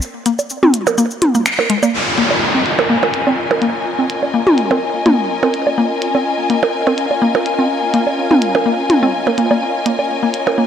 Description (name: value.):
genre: minimal techno.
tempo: 125 BPM.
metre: 4/4.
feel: swing 54% on 16ths.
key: Bb minor.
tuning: A4 = 439 Hz.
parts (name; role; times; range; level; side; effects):
minimal click drum kit; drums; 0.0-10.4 s; finger snaps, hi-hat, shaker; -21 LUFS; equal; overdrive, low-pass filter on perc, low-pass filter on hats, low-pass filter on snare, low-pass filter on room.
mallet-like synth pluck; riff; 0.3-10.6 s; Ab3 to C4; -19 LUFS; left 1 dB; chorus, tape echo.
electronic woodblock, toms and percussion blips; percussion; 0.4-10.6 s; none; -16 LUFS; right 2 dB; tape echo.
downlifter; sound effects; 1.9-5.8 s; none; -18 LUFS; equal; none.
bubbling stepped-filter texture; texture; 1.9-10.7 s; Db4 to F5; -25 LUFS; right 2 dB; chorus, built-in reverb.
warm symphonic string section; texture; 1.9-10.7 s; F4 to Ab5; -19 LUFS; left 3 dB; none.
room: moderate lush hall reverb, RT60 1.9 s.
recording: dry, gritty hardware recording.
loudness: -13 LUFS.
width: side -8 dB against mid.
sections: 0.0-1.9 A section; 1.9-10.7 B section.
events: band accent 1.5; filter sweep on synth arpeggio sound 1.9-10.7.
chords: 0.0 Abadd9 (rootless); 1.9 Bbm7.